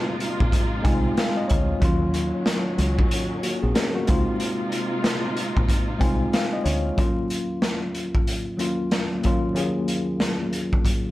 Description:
hip hop, boom-bap hip-hop; 93 BPM; 4/4; swing 63% on 16ths; Eb dorian; A4 = 437 Hz
mellow tine electric piano; accompaniment; 0.0-11.1 s; Eb2 to Ab5; -25 LUFS; left 1 dB; fast stereo tremolo, cassette tape, high-pass filter, low-pass filter
warm studio string section; sustained chords; 0.0-6.9 s; C3 to F4; -31 LUFS; right 1 dB; high-pass filter, low-pass filter
raw garage drum kit; drums; 0.2-11.0 s; hi-hat, kick drum, snare drum; -24 LUFS; equal
deep dub fingered electric bass; bass; 0.4-6.9 s; Bb1 to Eb2; -24 LUFS; equal
light reverb; vinyl crackle; -21 LUFS; side -16 dB against mid
0.0-7.0 A section; 7.0-11.1 B section
0.0 Dbmaj9; 1.8 Ebm7; 4.1 Dbmaj9; 7.0 Ebm7

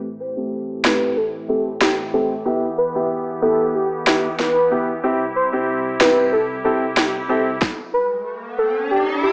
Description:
dancehall; 93 BPM; 4/4; straight; A4 = 437 Hz
warm grand piano; accompaniment; 0.0-7.5 s; A3 to G4; -25 LUFS; equal; low-pass filter
pipe organ, strings celeste; sustained chords; 0.0-7.6 s; C2 to G4; -31 LUFS; equal; sidechain pumping, low-pass filter
warm velvety synth lead; melody; 0.2-9.3 s; G4 to C5; -23 LUFS; equal; chorus, low-pass filter, digital delay
island pop drum kit; drums; 0.8-7.8 s; kick drum, rim click, snare drum; -22 LUFS; equal; overdrive
riser; sound effects; 8.2-9.3 s; -27 LUFS; equal
moderate plate reverb, RT60 1.5 s, digital ambience; worn, warbling old tape, cassette tape, warbly pitch drift, small speaker sound; -20 LUFS; mono
0.0-9.3 A section
filter sweep 0.0-9.3; stop 7.6-9.3; riser 8.2-9.3
0.0 Am7; 2.5 Em; 5.0 C; 7.6 N.C.

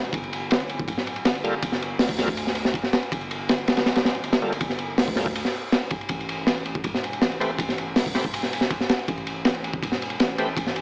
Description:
drum and bass, jungle; 161 BPM; 4/4; straight; A4 = 440 Hz
saturated sub bass; bass; 0.0-10.8 s; D1 to D2; -34 LUFS; equal; tube saturation
crunchy breakbeat drum kit; drums; 0.0-10.8 s; hi-hat, kick drum, ride cymbal, snare drum; -22 LUFS; equal; cassette tape
bright tonewheel organ; stabs; 1.4-10.5 s; G3 to B4; -30 LUFS; equal; overdrive, chorus vibrato, slow rotary speaker, cassette tape, dub echo
light reverb, small room ambience; home recording on cassette, small speaker sound; -22 LUFS; side -40 dB against mid
0.0-10.8 A section
0.1 Gm9; 6.1 Am9

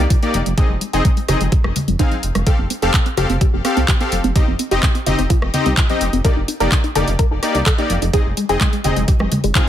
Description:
progressive house; 127 BPM; 4/4; straight; A4 = 440 Hz
tight sequenced synth; arpeggios; 0.0-9.6 s; Ab3 to Bb4; -23 LUFS; equal; chorus, phaser, sidechain pumping, ping-pong delay
dark detuned saw bass; bass; 0.0-9.5 s; F1 to C2; -20 LUFS; equal; sidechain pumping
electronic kick drum; drums; 0.1-9.7 s; -16 LUFS; equal; overdrive
house drum kit; drums; 0.1-9.7 s; handclaps, hi-hat, rim click; -23 LUFS; equal
soft supersaw; stabs; 0.2-9.7 s; Bb3 to F5; -21 LUFS; left 2 dB; sidechain pumping, ping-pong delay
congas; percussion; 0.3-9.4 s; -25 LUFS; equal; sidechain pumping on perc
digital ambience; -14 LUFS; side -11 dB against mid
0.0-9.7 A section
filter sweep on synth arpeggio sound 0.0-9.7
0.0 Ebmaj7/F; 0.6 Ab/F; 2.5 Fadd9; 4.4 Cm/F; 6.2 Ebmaj7/F; 8.1 Ab/F

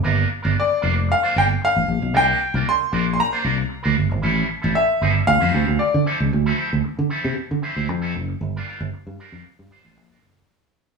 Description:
disco; 115 BPM; 4/4; straight; A4 = 440 Hz
electric guitar with an envelope filter; accompaniment; 0.0-10.4 s; F3 to C5; -25 LUFS; right 3 dB
fingered electric bass; bass; 0.0-10.4 s; F1 to D3; -21 LUFS; right 2 dB
bright grand piano; melody; 0.6-6.2 s; D5 to C6; -20 LUFS; left 1 dB
wet studio reverb, RT60 0.8 s; band playing live in one room, studio ambience; -18 LUFS; side -4 dB against mid
0.0-6.3 A section; 6.3-10.5 B section
fade-out 6.3-10.5
0.1 Gm7; 2.1 C9sus4; 4.2 A7; 5.3 Dm9; 8.4 Gm7

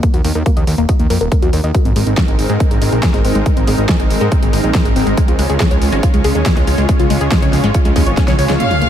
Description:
uplifting trance; 140 BPM; 4/4; straight; A4 = 440 Hz
wide unison pluck; arpeggios; 0.0-8.8 s; Ab3 to Eb5; -20 LUFS; left 2 dB; vintage 12-bit sampler grit, sidechain pumping, ping-pong delay
big-room dance drum kit; drums; 0.0-8.9 s; hi-hat, snare drum, toms; -22 LUFS; equal; overdrive
electronic kick drum; drums; 0.0-8.3 s; -14 LUFS; equal; overdrive
fat analog bass; bass; 0.1-8.6 s; Eb1 to Ab2; -17 LUFS; equal; sidechain pumping
supersaw pad; sustained chords; 1.7-8.9 s; Ab3 to Db5; -19 LUFS; right 1 dB; sidechain pumping
clear studio violin section; second line; 8.6-8.9 s; F5; -16 LUFS; equal
impact; sound effects; 8.6-8.9 s; -18 LUFS; equal
light reverb; -11 LUFS; side -10 dB against mid
0.0-8.6 A section
filter sweep on synth arpeggio sound 0.0-8.6; drum fill 8.2-8.6; band accent 8.5; impact 8.6
0.0 Eb5; 1.7 Abadd9; 5.2 Db

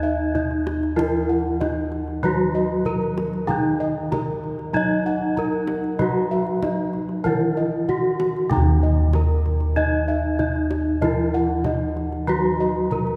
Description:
Javanese gamelan; 96 BPM; 4/4; straight; A4 = 440 Hz
gamelan-type bronze metallophone; melody; 0.0-13.2 s; Eb4 to Eb5; -27 LUFS; equal
gamelan-type bronze metallophone; accompaniment; 0.0-13.2 s; Eb3 to Eb4; -28 LUFS; equal
gamelan-type bossed gongs; arpeggios; 0.0-13.2 s; Eb5 to Bb5; -33 LUFS; equal
gamelan-type bossed gongs; bass; 0.0-13.2 s; Eb2 to Gb4; -27 LUFS; equal
kendang; percussion; 0.0-13.1 s; -34 LUFS; equal
wet church reverb, RT60 3.8 s; recorded in a church or concert hall; -22 LUFS; mono
0.0-13.2 A section

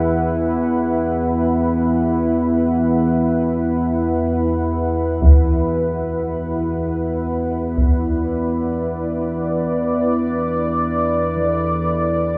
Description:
dark ambient drone; free time; A4 = 440 Hz
deep dark ambient pad; sustained chords; 0.0-12.4 s; E4 to F#5; -23 LUFS; equal; chorus, built-in reverb
analog drone; drone; 0.0-12.4 s; E2 to E3; -22 LUFS; equal; chorus
taiko ensemble; percussion; 5.2-8.0 s; -16 LUFS; equal; low-pass filter on perc
bronze singing bowl; arpeggios; 11.4-12.4 s; E3; -31 LUFS; equal
wet huge ambient reverb, RT60 7.8 s; -19 LUFS; mono
0.0-12.4 A section
0.0 E5

